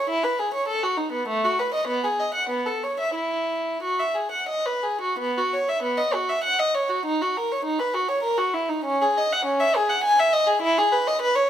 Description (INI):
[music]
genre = classical, baroque-style suite movement for unaccompanied violin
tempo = 84-104 BPM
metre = 3/4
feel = rubato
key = E major, B major from 5.2 s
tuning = A4 = 440 Hz
[part]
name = warm violin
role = solo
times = 0.0-11.5 s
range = A3 to G#5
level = -21 LUFS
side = equal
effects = none
[sound]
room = moderate stone room reverb, RT60 1.3 s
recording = minimal, uncompressed stereo recording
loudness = -21 LUFS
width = side -10 dB against mid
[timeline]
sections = 0.0-5.2 A section; 5.2-11.5 A section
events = none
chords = none